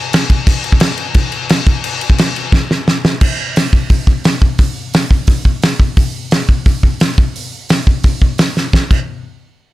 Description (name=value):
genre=punk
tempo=174 BPM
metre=4/4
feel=straight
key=none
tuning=none
part: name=loose indie drum kit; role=drums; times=0.1-9.0 s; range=crash cymbal, hi-hat, kick drum, snare drum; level=-11 LUFS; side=equal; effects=none
room=little or no reverb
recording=none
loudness=-11 LUFS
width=side -17 dB against mid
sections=0.0-3.2 A section; 3.2-8.7 B section; 8.7-9.7 C section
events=drum fill 2.5-3.2, 8.6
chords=none